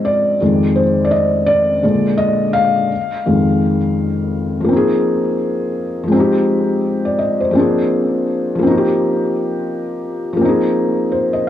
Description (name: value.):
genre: hip hop.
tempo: 84 BPM.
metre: 4/4.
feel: swing 60% on 16ths.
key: F dorian.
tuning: A4 = 440 Hz.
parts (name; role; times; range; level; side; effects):
felt-muted upright piano; solo; 0.0-11.5 s; F2 to F5; -14 LUFS; left 1 dB; cassette tape, low-pass filter, tape echo.
room: moderate studio reverb, RT60 0.6 s.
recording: cassette tape, small room ambience.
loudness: -14 LUFS.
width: side -11 dB against mid.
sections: 0.0-4.7 A section; 4.7-11.5 B section.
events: felt piano solo 0.0-4.7.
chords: 0.4 Fm7; 1.8 Bb7; 2.9 Fm7; 4.7 Ab6; 6.1 Fm7; 7.5 Bb7; 8.6 Eb69; 10.4 Ab6.